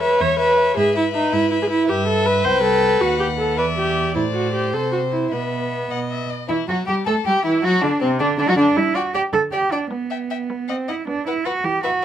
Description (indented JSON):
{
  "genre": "quick classical-period movement for string quartet",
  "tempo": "105 BPM (dotted quarters)",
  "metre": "6/8",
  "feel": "straight",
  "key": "E minor",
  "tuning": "A4 = 436 Hz",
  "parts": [
    { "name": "warm violin", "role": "melody", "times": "0.0-12.0 s", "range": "C4 to G5", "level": "-26 LUFS", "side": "left 9 dB", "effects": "none" },
    { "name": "warm violin", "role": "second line", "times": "0.0-12.0 s", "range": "C4 to E5", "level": "-25 LUFS", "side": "left 4 dB", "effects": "none" },
    { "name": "warm viola", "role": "accompaniment", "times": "0.0-12.0 s", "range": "C3 to C#5", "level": "-20 LUFS", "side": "right 1 dB", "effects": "none" },
    { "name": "warm cello", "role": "bass", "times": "0.0-12.0 s", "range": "C2 to A4", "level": "-22 LUFS", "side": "right 4 dB", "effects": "none" }
  ],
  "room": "light reverb",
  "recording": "close, detailed microphones",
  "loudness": "-17 LUFS",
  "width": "side -10 dB against mid",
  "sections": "0.0-6.5 A section; 6.5-12.0 B section",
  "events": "none",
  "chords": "0.0 E5; 0.8 E/G#; 1.9 Em/G; 2.5 Am/C; 3.0 B/D#; 3.6 Em; 4.2 Am; 5.3 E5/B; 6.5 Em; 7.6 D; 8.8 G5; 9.9 Em/B; 10.5 B; 11.1 Bm"
}